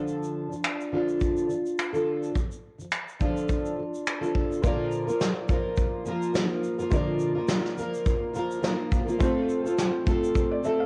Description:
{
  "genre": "acoustic pop",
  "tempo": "105 BPM",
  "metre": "4/4",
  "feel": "swing 55% on 16ths",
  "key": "unclear",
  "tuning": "A4 = 440 Hz",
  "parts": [
    { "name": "fingerpicked plugged-in steel-string acoustic guitar", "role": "accompaniment", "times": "0.0-10.9 s", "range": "Bb2 to Bb4", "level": "-29 LUFS", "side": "equal", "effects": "double-tracked, cassette tape" },
    { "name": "soft brush drum kit", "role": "drums", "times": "0.1-10.8 s", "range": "finger snaps, kick drum, shaker, snare drum", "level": "-30 LUFS", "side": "equal", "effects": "cassette tape" },
    { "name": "felt-muted upright piano", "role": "accompaniment", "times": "4.6-10.9 s", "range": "A3 to F5", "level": "-37 LUFS", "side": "equal", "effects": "cassette tape" }
  ],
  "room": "light reverb, small room ambience",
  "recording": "home recording on cassette",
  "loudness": "-27 LUFS",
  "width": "mono",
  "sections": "0.0-4.6 A section; 4.6-10.9 B section",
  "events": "none",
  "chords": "0.0 Dm; 4.6 Bb; 9.2 F/A"
}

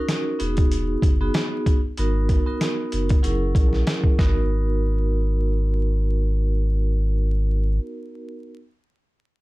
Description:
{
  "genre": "hip hop, boom-bap hip-hop",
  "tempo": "95 BPM",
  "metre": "4/4",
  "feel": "swing 55% on 16ths",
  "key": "G# minor",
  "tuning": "A4 = 440 Hz",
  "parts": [
    { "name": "vibraphone with medium mallets", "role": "accompaniment", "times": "0.0-8.5 s", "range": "F#3 to A#4", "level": "-27 LUFS", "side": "right 1 dB", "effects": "high-pass filter, low-pass filter" },
    { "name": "boom bap sampler-style drum kit", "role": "drums", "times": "0.1-4.3 s", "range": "hi-hat, kick drum, snare drum", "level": "-20 LUFS", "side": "equal", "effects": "none" },
    { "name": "warm sub bass", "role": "bass", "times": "0.4-7.8 s", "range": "E1 to A#1", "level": "-21 LUFS", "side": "equal", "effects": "none" }
  ],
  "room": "little or no reverb",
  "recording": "dark, warm production, vinyl crackle",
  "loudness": "-19 LUFS",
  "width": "side -19 dB against mid",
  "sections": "0.0-4.5 A section; 4.5-7.0 B section",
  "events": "none",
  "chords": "0.4 Emaj7; 2.0 G#m7; 3.2 F#7; 4.2 G#m7"
}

